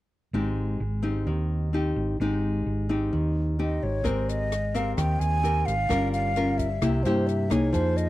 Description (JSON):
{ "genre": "bossa nova", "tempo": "130 BPM", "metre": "4/4", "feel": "straight", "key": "Ab major", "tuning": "A4 = 438 Hz", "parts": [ { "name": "nylon-string guitar", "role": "accompaniment", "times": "0.3-8.1 s", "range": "C3 to Bb4", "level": "-27 LUFS", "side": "left 2 dB", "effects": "none" }, { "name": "hollow-body short-scale fingered electric bass", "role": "bass", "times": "0.3-8.1 s", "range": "G1 to G2", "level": "-27 LUFS", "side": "right 1 dB", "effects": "none" }, { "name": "mellow hollow concert flute", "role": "melody", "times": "3.6-8.1 s", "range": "C5 to Ab5", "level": "-28 LUFS", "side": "right 1 dB", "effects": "tape echo" }, { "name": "compact cocktail drum kit", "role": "drums", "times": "4.1-8.1 s", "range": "hi-hat, kick drum, rim click", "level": "-34 LUFS", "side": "equal", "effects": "none" } ], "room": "studio reverb", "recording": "dry, close 1970s-style studio recording", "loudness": "-23 LUFS", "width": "side -16 dB against mid", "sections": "0.3-4.0 A section; 4.0-8.1 B section", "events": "none", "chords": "0.3 Abmaj7; 4.0 Abmaj9; 5.9 Gm7b5; 6.8 C7" }